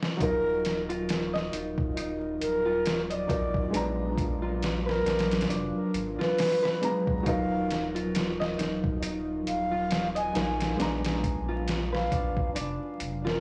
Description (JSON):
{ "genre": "trip hop", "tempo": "68 BPM", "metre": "4/4", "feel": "swing 57% on 16ths", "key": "Eb harmonic minor", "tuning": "A4 = 440 Hz", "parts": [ { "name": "felt-muted upright piano", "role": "accompaniment", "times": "0.0-13.4 s", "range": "Gb3 to Bb5", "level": "-38 LUFS", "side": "equal", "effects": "tremolo, tape echo" }, { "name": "trip hop sampler-style drum kit", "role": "drums", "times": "0.0-13.4 s", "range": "hi-hat, kick drum, snare drum", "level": "-34 LUFS", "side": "equal", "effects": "overdrive, small room ambience" }, { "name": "reedy baroque flute", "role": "melody", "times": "0.2-13.4 s", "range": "Bb4 to Ab5", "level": "-33 LUFS", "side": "equal", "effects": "tape echo" }, { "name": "string machine, cellos", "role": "sustained chords", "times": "0.2-13.4 s", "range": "Gb3 to F4", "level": "-38 LUFS", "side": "equal", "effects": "phaser, ensemble chorus" }, { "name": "concert harp", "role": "arpeggios", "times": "0.2-13.4 s", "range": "D4 to Eb5", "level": "-37 LUFS", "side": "equal", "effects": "vintage 12-bit sampler grit, tape echo" }, { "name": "warm sub bass", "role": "bass", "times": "0.2-13.4 s", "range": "Eb1 to Bb1", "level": "-39 LUFS", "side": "equal", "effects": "transformer saturation" } ], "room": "light reverb, studio reverb", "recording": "blown-out, overdriven recording, vinyl crackle, overdrive, studio ambience", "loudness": "-29 LUFS", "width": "mono", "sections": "0.2-13.4 A section", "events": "break 0.0; drum fill 0.0", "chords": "0.2 Ebmadd9; 3.7 Bb7b9; 7.3 Ebmadd9; 10.8 Bb7b9" }